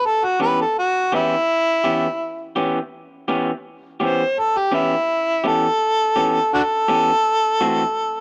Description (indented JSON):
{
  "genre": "blues",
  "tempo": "83 BPM",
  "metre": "4/4",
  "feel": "straight",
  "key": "unclear",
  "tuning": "A4 = 440 Hz",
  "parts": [
    { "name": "mellow harmonica", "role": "melody", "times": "0.0-8.2 s", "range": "D4 to C5", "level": "-20 LUFS", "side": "equal", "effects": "overdrive" },
    { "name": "electric guitar through a small old amp", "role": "stabs", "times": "0.4-7.8 s", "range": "E3 to G4", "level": "-26 LUFS", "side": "equal", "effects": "none" }
  ],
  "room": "small room ambience",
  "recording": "dry, close 1970s-style studio recording",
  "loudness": "-20 LUFS",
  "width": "mono",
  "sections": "0.0-8.2 A section",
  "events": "harmonica solo 0.0-8.2",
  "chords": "0.0 Em6; 7.2 D9 (rootless)",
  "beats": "0.05 0.77 | 1.49 2.21 2.93 3.65 | 4.37 5.09 5.81 6.53 | 7.25 7.97"
}